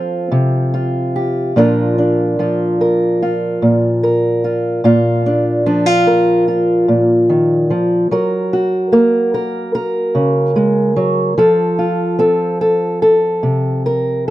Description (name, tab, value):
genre	folk, solo fingerstyle acoustic guitar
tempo	73 BPM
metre	4/4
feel	straight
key	Bb major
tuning	A4 = 440 Hz
part	fingerpicked old ladder-braced acoustic guitar	solo	0.0-14.3 s	Bb2 to Bb4	-12 LUFS	equal	none
room	small room ambience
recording	dry, close 1970s-style studio recording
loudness	-12 LUFS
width	side -15 dB against mid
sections	0.0-1.6 A section; 1.6-14.3 B section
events	none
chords	0.0 Fadd9; 1.6 Bb; 8.1 Gb; 11.4 F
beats	0.73 | 1.56 2.38 3.21 4.03 | 4.84 5.66 6.48 7.29 | 8.10 8.92 9.73 10.55 | 11.37 12.19 13.01 13.84